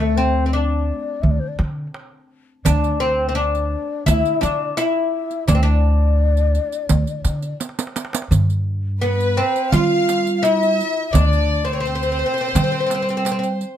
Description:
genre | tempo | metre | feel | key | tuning
Turkish makam ensemble | 85 BPM | 4/4 | straight | unclear | A4 = 439 Hz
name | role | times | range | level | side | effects
oud | melody | 0.0-13.5 s | A3 to F4 | -21 LUFS | equal | none
breathy mellow low ney | second line | 0.0-13.6 s | A4 to F5 | -26 LUFS | left 6 dB | none
upright bass | bass | 0.0-13.6 s | D2 to G3 | -19 LUFS | equal | none
darbuka | percussion | 0.0-13.7 s | none | -23 LUFS | right 3 dB | none
riq | percussion | 2.7-13.7 s | none | -27 LUFS | right 6 dB | none
warm symphonic violin section | second line | 9.0-13.6 s | B4 to F5 | -25 LUFS | equal | none
room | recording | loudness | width
little or no reverb | close, detailed microphones | -17 LUFS | side -10 dB against mid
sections
0.0-8.3 A section; 8.3-13.8 B section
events
drum fill 7.6-8.3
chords
none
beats
0.53 1.24 1.94 | 2.65 3.36 4.07 4.78 | 5.48 6.19 6.90 7.61 | 8.31 9.02 9.73 10.43 | 11.14 11.85 12.55 13.26

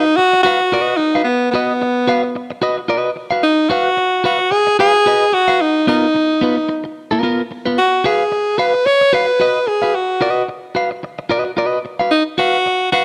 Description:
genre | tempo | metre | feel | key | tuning
funk | 111 BPM | 4/4 | swing 56% on 16ths | G# dorian | A4 = 439 Hz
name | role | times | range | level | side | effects
breathy alto saxophone | melody | 0.0-13.0 s | B3 to C#5 | -16 LUFS | equal | none
clean electric guitar | accompaniment | 0.0-13.0 s | B3 to E#5 | -21 LUFS | equal | vibrato effect
room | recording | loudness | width
moderate echo chamber reverb, RT60 1.9 s, small room reverb | dark, warm production | -16 LUFS | mono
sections
0.0-13.0 A section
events
none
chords
0.0 G#m7 (rootless); 5.6 Bmaj7#11; 7.8 G#m7 (rootless)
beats
0.17 0.72 | 1.26 1.80 2.35 2.89 | 3.43 3.97 4.51 5.06 | 5.60 6.14 6.68 7.23 | 7.77 8.31 8.86 9.40 | 9.94 10.48 11.03 11.57 | 12.11 12.65

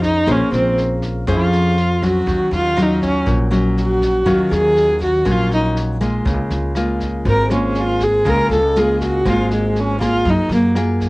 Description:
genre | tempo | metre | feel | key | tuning
bossa nova | 120 BPM | 4/4 | straight | unclear | A4 = 442 Hz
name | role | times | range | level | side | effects
dark viola | melody | 0.0-10.7 s | Ab3 to Bb4 | -17 LUFS | equal | cassette tape
nylon-string guitar | accompaniment | 0.0-11.1 s | Ab2 to C5 | -19 LUFS | left 1 dB | none
upright bass | bass | 0.0-11.1 s | Ab1 to Gb2 | -21 LUFS | equal | none
vintage brush drum kit | drums | 0.0-11.1 s | kick drum, rim click, snare drum | -29 LUFS | equal | cassette tape
room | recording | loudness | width
moderate booth ambience, RT60 0.2 s | home recording on cassette | -14 LUFS | side -22 dB against mid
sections
0.0-11.1 A section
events
viola solo 0.0-11.1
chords
0.0 Bbm9; 2.3 Ebm9; 6.3 Db6; 10.2 Gbmaj9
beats
| 0.28 0.77 1.27 1.77 | 2.27 2.77 3.27 3.77 | 4.27 4.76 5.26 5.76 | 6.26 6.76 7.26 7.75 | 8.25 8.75 9.25 9.75 | 10.25 10.75

